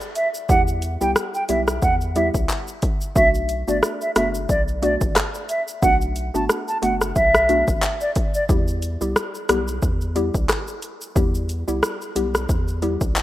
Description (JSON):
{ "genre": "dancehall", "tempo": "90 BPM", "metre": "4/4", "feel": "swing 56% on 16ths", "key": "E minor", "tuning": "A4 = 441 Hz", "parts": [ { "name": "deep house drum kit", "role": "drums", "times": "0.0-13.2 s", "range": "handclaps, hi-hat, kick drum, rim click, shaker", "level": "-22 LUFS", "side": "equal", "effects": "none" }, { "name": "concert flute", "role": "melody", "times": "0.2-8.4 s", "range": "D5 to A5", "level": "-21 LUFS", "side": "right 1 dB", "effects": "digital delay" }, { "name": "hollow square pluck", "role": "accompaniment", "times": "0.5-13.1 s", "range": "G3 to G4", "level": "-26 LUFS", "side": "left 1 dB", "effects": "chorus, sidechain pumping" }, { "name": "saturated sub bass", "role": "bass", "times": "0.5-13.1 s", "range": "F#1 to E2", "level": "-26 LUFS", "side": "equal", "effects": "none" } ], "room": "moderate plate reverb, RT60 2.8 s", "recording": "rough home demo mix", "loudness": "-18 LUFS", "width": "side -14 dB against mid", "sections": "0.0-13.2 A section", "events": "none", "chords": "0.0 Em; 3.2 Bm7; 8.5 Em" }